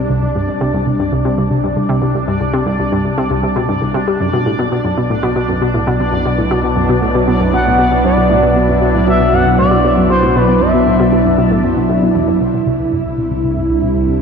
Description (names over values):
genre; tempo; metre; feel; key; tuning
ambient, sequencer-driven space music; 117 BPM; 4/4; straight; unclear; A4 = 441 Hz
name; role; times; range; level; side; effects
sweeping resonant pad; sustained chords; 0.0-14.2 s; B2 to E4; -16 LUFS; right 1 dB; chorus, shimmer reverb
analog pluck; riff; 0.0-14.1 s; C2 to G3; -17 LUFS; left 1 dB; chorus, shimmer reverb, ping-pong delay
warm sub bass; bass; 0.0-14.2 s; B1 to C2; -23 LUFS; equal; none
bubbling stepped-filter texture; texture; 0.0-14.2 s; A3 to D5; -21 LUFS; left 1 dB; chorus, built-in reverb, shimmer reverb
expressive synth lead; melody; 7.5-11.6 s; B4 to F#5; -16 LUFS; left 1 dB; chorus, shimmer reverb, ping-pong delay
room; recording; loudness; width
wet lush hall reverb, RT60 3.2 s; dreamy mix soaked in reverb, nothing above 10.3 kHz; -12 LUFS; side -6 dB against mid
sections
0.0-12.4 A section; 12.4-14.2 B section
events
fade-in on analog synth pad 0.0-12.4; fade-in on sub bass 0.0-12.4; filter sweep on synth arpeggio sound 12.4-14.2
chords
0.0 Cadd9; 4.2 Bsus4; 12.4 Cadd9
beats
| 0.10 0.61 1.12 1.64 | 2.15 2.66 3.18 3.69 | 4.20 4.71 5.23 5.74 | 6.25 6.77 7.28 7.79 | 8.30 8.82 9.33 9.84 | 10.36 10.87 11.38 11.89 | 12.41 12.92 13.43 13.95